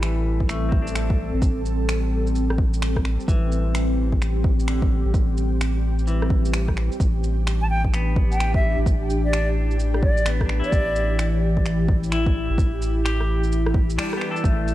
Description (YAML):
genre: future garage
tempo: 129 BPM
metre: 4/4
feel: swing 63% on 16ths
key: unclear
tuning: A4 = 441 Hz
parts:
  - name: clean electric guitar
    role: accompaniment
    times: 0.0-14.7 s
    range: D3 to A4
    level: -32 LUFS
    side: left 4 dB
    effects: sidechain pumping, low-pass filter, analog delay
  - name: ethereal airy pad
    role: sustained chords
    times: 0.0-14.7 s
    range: C3 to A4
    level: -27 LUFS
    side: equal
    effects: ensemble chorus, built-in reverb, sidechain pumping
  - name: warm sub bass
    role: bass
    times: 0.0-14.7 s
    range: A1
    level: -23 LUFS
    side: equal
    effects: sidechain pumping
  - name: electronic finger snaps, shaker and rim click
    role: drums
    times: 0.0-14.7 s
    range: none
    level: -31 LUFS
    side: equal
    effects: overdrive
  - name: electronic kick drum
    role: drums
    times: 0.4-14.6 s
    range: none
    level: -23 LUFS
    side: equal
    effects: overdrive
  - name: bright silver concert flute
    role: melody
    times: 7.6-11.3 s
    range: D5 to A5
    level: -27 LUFS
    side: equal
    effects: tape echo
room: light reverb, digital ambience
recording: none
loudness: -19 LUFS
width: side -14 dB against mid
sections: 0.0-14.4 A section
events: break 14.0-14.4; band accent 14.0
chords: 0.0 Am7; 7.0 Em7/A